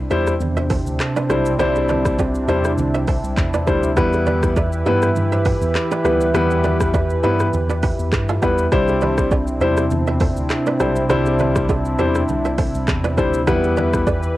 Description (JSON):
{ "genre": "afrobeats", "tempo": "101 BPM", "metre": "4/4", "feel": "swing 55% on 16ths", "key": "C major", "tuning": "A4 = 440 Hz", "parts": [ { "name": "warm analog pad", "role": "sustained chords", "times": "0.0-14.4 s", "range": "C3 to B4", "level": "-22 LUFS", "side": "right 1 dB", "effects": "chorus, cassette tape" }, { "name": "mellow tine electric piano", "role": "bass", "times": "0.0-14.3 s", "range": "B1 to G2", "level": "-22 LUFS", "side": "equal", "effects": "medium stereo tremolo" }, { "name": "warm grand piano", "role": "accompaniment", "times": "0.1-14.0 s", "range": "G3 to C5", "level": "-20 LUFS", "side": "left 2 dB", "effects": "cassette tape" }, { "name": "kora", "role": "riff", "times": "0.1-14.2 s", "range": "E4 to E5", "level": "-27 LUFS", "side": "right 4 dB", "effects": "cassette tape, analog delay" }, { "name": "afro-pop drum kit", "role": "drums", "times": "0.1-14.4 s", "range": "handclaps, hi-hat, kick drum, rim click, shaker", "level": "-22 LUFS", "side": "equal", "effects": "cassette tape" }, { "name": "bongos and congas", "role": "percussion", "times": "0.1-14.2 s", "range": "none", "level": "-29 LUFS", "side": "right 4 dB", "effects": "none" } ], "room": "light reverb", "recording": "home recording on cassette", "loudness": "-16 LUFS", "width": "side -16 dB against mid", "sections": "0.0-14.4 A section", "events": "none", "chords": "0.0 Cadd9; 4.0 Em; 8.7 Cadd9; 13.5 Em" }